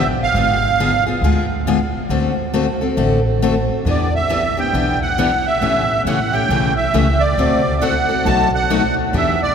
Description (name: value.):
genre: acoustic string swing (jazz manouche).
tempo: 136 BPM.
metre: 4/4.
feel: swing 62% on 8ths.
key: unclear.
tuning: A4 = 444 Hz.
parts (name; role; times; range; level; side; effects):
musette accordion; melody; 0.0-1.0, 3.9-9.5 s; D5 to A5; -19 LUFS; right 3 dB; none.
picked steel-string acoustic guitar; accompaniment; 0.0-9.4 s; B2 to A4; -18 LUFS; left 3 dB; none.
upright bass; bass; 0.0-9.5 s; G#1 to E2; -21 LUFS; right 1 dB; none.
room: wet cathedral reverb, RT60 5.2 s.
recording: recorded in a church or concert hall.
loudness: -14 LUFS.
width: side -7 dB against mid.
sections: 0.0-9.5 A section.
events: none.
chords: 0.3 G#dim7; 2.1 D7; 3.9 Em7; 5.6 A7; 7.4 D7; 8.3 B7.